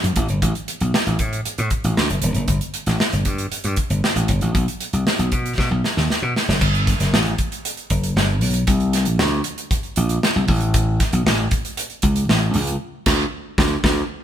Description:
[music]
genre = polished 1980s jazz-funk pop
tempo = 116 BPM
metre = 4/4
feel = straight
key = unclear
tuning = A4 = 436 Hz
[part]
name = slap bass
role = bass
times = 0.0-14.0 s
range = D#1 to B2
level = -20 LUFS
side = equal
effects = none
[part]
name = modern studio drum kit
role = drums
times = 0.0-14.0 s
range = crash cymbal, hi-hat, kick drum, snare drum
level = -21 LUFS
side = equal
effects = none
[sound]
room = moderate stone room reverb, RT60 1.2 s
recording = band playing live in one room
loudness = -17 LUFS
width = side -10 dB against mid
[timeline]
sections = 0.0-6.6 A section; 6.6-14.2 B section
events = drum fill 5.6-6.6; band accent 12.8-14.2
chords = none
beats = | 0.42 0.94 1.45 1.97 | 2.48 3.00 3.52 4.03 | 4.55 5.06 5.58 6.10 | 6.61 7.13 7.64 8.16 | 8.68 9.19 9.71 10.22 | 10.74 11.26 11.77 12.29 | 12.81 13.32 13.84

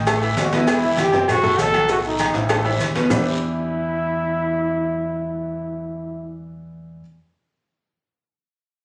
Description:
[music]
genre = latin, salsa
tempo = 198 BPM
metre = 4/4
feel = straight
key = E minor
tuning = A4 = 440 Hz
[part]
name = bright upright piano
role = accompaniment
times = 0.0-7.0 s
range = A2 to A5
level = -26 LUFS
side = equal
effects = none
[part]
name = deep dub fingered electric bass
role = bass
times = 0.0-7.0 s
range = E1 to E2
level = -30 LUFS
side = equal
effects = none
[part]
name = agogo bells and timbales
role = percussion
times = 0.1-3.2 s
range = none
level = -27 LUFS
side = equal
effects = none
[part]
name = claves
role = percussion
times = 0.1-3.2 s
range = none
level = -38 LUFS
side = equal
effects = none
[part]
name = congas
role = percussion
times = 0.1-3.2 s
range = none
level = -32 LUFS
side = equal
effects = none
[part]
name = cowbell and bongos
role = percussion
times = 0.1-3.2 s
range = none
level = -30 LUFS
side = equal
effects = none
[part]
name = guiro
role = percussion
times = 0.1-3.2 s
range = none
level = -36 LUFS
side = equal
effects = none
[part]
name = maracas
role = percussion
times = 0.1-3.2 s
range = none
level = -40 LUFS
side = equal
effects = none
[part]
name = bright trombone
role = melody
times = 0.4-6.3 s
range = D#4 to A4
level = -24 LUFS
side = equal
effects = none
[sound]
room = moderate large studio reverb, RT60 0.9 s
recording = recorded on a phone in the room, studio reverb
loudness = -21 LUFS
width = mono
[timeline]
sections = 0.0-3.1 A section; 3.1-5.5 B section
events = drum fill 2.4-3.1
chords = 0.1 A5; 0.7 Em; 1.3 F#dim; 1.9 B7; 2.5 A5; 3.1 Em7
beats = 0.07 0.38 | 0.68 0.98 1.29 1.59 | 1.89 2.20 2.50 2.81 | 3.11 3.41 3.72 4.02 | 4.33 4.63 4.93 5.24

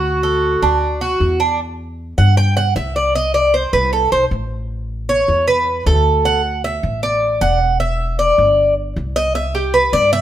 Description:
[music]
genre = latin, Cuban son and guajira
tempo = 155 BPM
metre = 4/4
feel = straight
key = unclear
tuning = A4 = 441 Hz
[part]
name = warm clarinet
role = melody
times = 0.0-1.2 s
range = F#4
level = -18 LUFS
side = right 1 dB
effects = none
[part]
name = Cuban tres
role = arpeggios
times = 0.0-10.2 s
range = D4 to G5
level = -15 LUFS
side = right 1 dB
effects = none
[part]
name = upright bass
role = bass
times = 0.0-10.2 s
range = E1 to G2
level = -19 LUFS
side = equal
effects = none
[sound]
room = moderate stone room reverb, RT60 1.0 s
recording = band playing live in one room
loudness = -14 LUFS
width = side -11 dB against mid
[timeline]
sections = 0.0-1.6 A section; 1.6-10.2 B section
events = Cuban tres solo 1.6-10.2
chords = 0.0 D; 1.6 Em; 3.1 Amadd9; 4.7 A; 6.3 D; 7.8 Em; 9.4 C5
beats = | 0.04 0.43 0.82 1.21 | 1.60 1.99 2.37 2.76 | 3.15 3.54 3.93 4.31 | 4.70 5.09 5.48 5.87 | 6.25 6.64 7.03 7.42 | 7.80 8.19 8.58 8.96 | 9.35 9.74 10.12

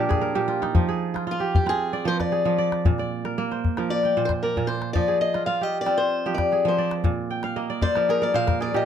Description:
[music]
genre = west african traditional, West African string and xylophone music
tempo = 115 BPM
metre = 4/4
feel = straight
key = F dorian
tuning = A4 = 440 Hz
[part]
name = fingerpicked swing-style acoustic guitar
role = melody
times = 0.0-8.9 s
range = D4 to F5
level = -24 LUFS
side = left 4 dB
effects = plate reverb
[part]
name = kora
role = arpeggios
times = 0.0-8.9 s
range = Bb2 to G5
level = -25 LUFS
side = right 5 dB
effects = none
[part]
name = calabash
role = percussion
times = 0.1-8.7 s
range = none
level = -23 LUFS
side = left 3 dB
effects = none
[sound]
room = light reverb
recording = none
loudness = -21 LUFS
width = side -8 dB against mid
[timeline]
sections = 0.0-8.9 A section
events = kora fill 0.0-0.8, 7.3-8.9; steel-string acoustic guitar solo 0.0-8.9; drum fill 4.6-4.9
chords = 0.0 Bb; 0.8 Fm; 2.9 Bb; 4.9 Fm; 7.0 Bb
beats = 0.24 | 0.76 1.28 1.81 2.33 | 2.85 3.38 3.90 4.42 | 4.94 5.47 5.99 6.51 | 7.04 7.56 8.08 8.60

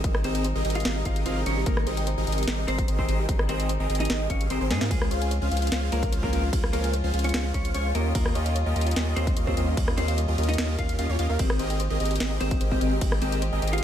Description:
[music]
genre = future bass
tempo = 148 BPM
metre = 4/4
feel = half-time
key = Ab major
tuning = A4 = 440 Hz
[part]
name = warm chamber string section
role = sustained chords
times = 0.0-13.8 s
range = C3 to G4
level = -37 LUFS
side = left 3 dB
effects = sidechain pumping
[part]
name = airy dreamy lead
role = arpeggios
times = 0.0-13.8 s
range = C5 to F5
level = -37 LUFS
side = equal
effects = chorus, sidechain pumping, dub echo
[part]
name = thumb-piano-like synth pluck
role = arpeggios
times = 0.0-13.8 s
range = F4 to Ab5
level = -38 LUFS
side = right 5 dB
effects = chorus, sidechain pumping, dub echo
[part]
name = supersaw chords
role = riff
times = 0.0-13.8 s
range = C4 to F5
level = -32 LUFS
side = right 1 dB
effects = phaser, sidechain pumping
[part]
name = saturated sub bass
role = bass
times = 0.0-13.8 s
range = Ab1 to Ab2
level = -27 LUFS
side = equal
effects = sidechain pumping
[part]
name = electronic kick drum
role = drums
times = 0.0-13.1 s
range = none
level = -26 LUFS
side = equal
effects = none
[part]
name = trap drum kit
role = drums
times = 0.0-13.8 s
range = hi-hat, ride cymbal, rim click, snare drum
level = -32 LUFS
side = equal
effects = none
[part]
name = clean electric guitar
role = melody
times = 0.2-13.8 s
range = Ab3 to F5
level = -33 LUFS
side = left 2 dB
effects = lush chorus, sidechain pumping, dub echo
[sound]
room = little or no reverb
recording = none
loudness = -23 LUFS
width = side -10 dB against mid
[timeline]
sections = 0.0-13.8 A section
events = drum fill 4.7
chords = 0.0 Abmaj9; 4.9 Dbmaj7; 7.9 Eb9; 11.4 Abmaj9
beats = | 0.04 0.45 0.85 1.26 | 1.66 2.07 2.48 2.88 | 3.29 3.69 4.10 4.50 | 4.91 5.31 5.72 6.12 | 6.53 6.93 7.34 7.75 | 8.15 8.56 8.96 9.37 | 9.77 10.18 10.58 10.99 | 11.39 11.80 12.20 12.61 | 13.02 13.42 13.83

